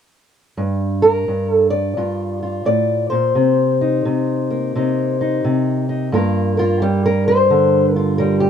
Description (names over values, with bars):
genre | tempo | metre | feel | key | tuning
acoustic country blues, solo or duo | 87 BPM | 4/4 | swing 64% on 8ths | G minor | A4 = 440 Hz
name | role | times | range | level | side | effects
fingerpicked old ladder-braced acoustic guitar | solo | 0.6-8.5 s | G2 to D5 | -15 LUFS | equal | none
room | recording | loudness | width
moderate booth ambience, RT60 0.2 s | dark, warm production | -15 LUFS | side -8 dB against mid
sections
0.6-6.1 A section; 6.1-8.5 B section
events
steel-string acoustic guitar solo 6.1-8.5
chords
0.6 Gm7; 3.3 Cm7; 6.1 Gm7